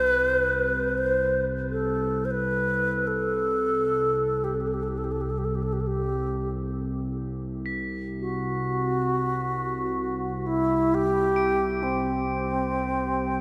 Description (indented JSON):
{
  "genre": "world meditative, free-time meditation music",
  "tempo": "free time",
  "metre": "none",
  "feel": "none",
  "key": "unclear",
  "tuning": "A4 = 438 Hz",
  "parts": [
    { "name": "bright alto flute", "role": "melody", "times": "0.0-13.4 s", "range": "C4 to C5", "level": "-27 LUFS", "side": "equal", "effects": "diffuse ambient delay" },
    { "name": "analog drone", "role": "drone", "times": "0.0-13.4 s", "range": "C2", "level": "-32 LUFS", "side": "equal", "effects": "chorus" },
    { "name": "crotales", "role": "texture", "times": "0.0-13.4 s", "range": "A6 to D7", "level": "-42 LUFS", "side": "equal", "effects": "none" }
  ],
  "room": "wet cathedral reverb, RT60 4.8 s",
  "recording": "in a vast, echoing space",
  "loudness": "-26 LUFS",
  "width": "mono",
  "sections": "0.0-13.4 A section",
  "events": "none",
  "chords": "none"
}